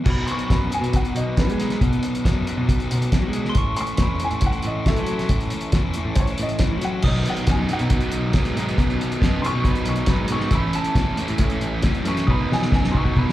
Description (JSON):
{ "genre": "indie rock", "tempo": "138 BPM", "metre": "4/4", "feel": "straight", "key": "B mixolydian", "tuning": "A4 = 440 Hz", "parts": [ { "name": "fuzz guitar", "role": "riff", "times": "0.0-13.3 s", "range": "A2 to E4", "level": "-27 LUFS", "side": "left 4 dB", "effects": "distortion" }, { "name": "glockenspiel with hard plastic mallets", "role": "second line", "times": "0.1-13.3 s", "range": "B5 to E6", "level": "-36 LUFS", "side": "right 2 dB", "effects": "slapback echo" }, { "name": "modern bright picked electric bass", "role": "bass", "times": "0.1-13.3 s", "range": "A1 to G#3", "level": "-25 LUFS", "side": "equal", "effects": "none" }, { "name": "cloth-damped thuddy drum kit", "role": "drums", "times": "0.1-13.3 s", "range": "crash cymbal, hi-hat, kick drum, snare drum, toms", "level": "-21 LUFS", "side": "equal", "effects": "none" }, { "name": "warm upright piano", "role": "melody", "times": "0.3-13.3 s", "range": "E4 to C#6", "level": "-29 LUFS", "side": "left 1 dB", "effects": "slapback echo, plate reverb" }, { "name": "overdriven semi-hollow guitar", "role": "riff", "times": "7.0-13.3 s", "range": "A2 to E4", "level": "-25 LUFS", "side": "right 5 dB", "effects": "lush chorus, slapback echo" } ], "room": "light reverb", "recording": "live gig heard through the venue's PA, club reverb", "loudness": "-19 LUFS", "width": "side -14 dB against mid", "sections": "0.1-13.3 A section", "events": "upright piano solo 0.1-13.3; drum fill 12.3-13.3", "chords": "0.1 B; 3.6 A; 7.0 B; 10.5 A; 12.3 B", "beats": "| 0.07 0.51 0.94 1.38 | 1.82 2.25 2.69 3.12 | 3.56 4.00 4.43 4.87 | 5.30 5.74 6.17 6.61 | 7.04 7.47 7.91 8.35 | 8.78 9.22 9.65 10.09 | 10.53 10.96 11.40 11.84 | 12.28 12.72 13.16" }